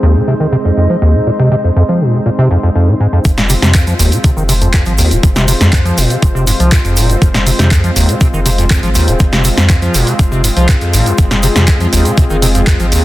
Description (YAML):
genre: acid house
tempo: 121 BPM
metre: 4/4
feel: straight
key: F minor pentatonic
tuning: A4 = 440 Hz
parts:
  - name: warm analog pad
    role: sustained chords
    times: 0.0-13.0 s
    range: Ab3 to C5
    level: -18 LUFS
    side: left 1 dB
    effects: lush chorus, sidechain pumping
  - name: liquid acid bass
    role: riff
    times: 0.0-13.0 s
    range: Eb2 to F3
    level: -13 LUFS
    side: equal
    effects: chorus, overdrive, sidechain pumping
  - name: warbly tape-like pad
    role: texture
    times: 0.0-3.3 s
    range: C4 to C6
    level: -21 LUFS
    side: equal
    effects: chorus, built-in reverb, sidechain pumping
  - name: punchy analog drum machine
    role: drums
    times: 3.2-13.0 s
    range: handclaps, hi-hat, snare drum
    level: -16 LUFS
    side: equal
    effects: overdrive
  - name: egg shaker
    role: percussion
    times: 3.2-13.0 s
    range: none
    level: -24 LUFS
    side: right 3 dB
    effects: none
  - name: warm sub bass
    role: bass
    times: 3.3-13.0 s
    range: Eb1 to F2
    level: -14 LUFS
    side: equal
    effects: sidechain pumping
  - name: electronic kick drum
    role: drums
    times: 3.3-12.8 s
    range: none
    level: -11 LUFS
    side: equal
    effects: overdrive
room: light reverb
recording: dense, heavily limited modern master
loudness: -9 LUFS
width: side -16 dB against mid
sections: 0.0-3.2 A section; 3.2-13.0 B section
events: drop 3.2-13.0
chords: 0.0 Fm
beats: 0.28 0.77 | 1.27 1.76 2.26 2.75 | 3.25 3.75 4.24 4.74 | 5.23 5.73 6.23 6.72 | 7.22 7.71 8.21 8.71 | 9.20 9.70 10.19 10.69 | 11.18 11.68 12.18 12.67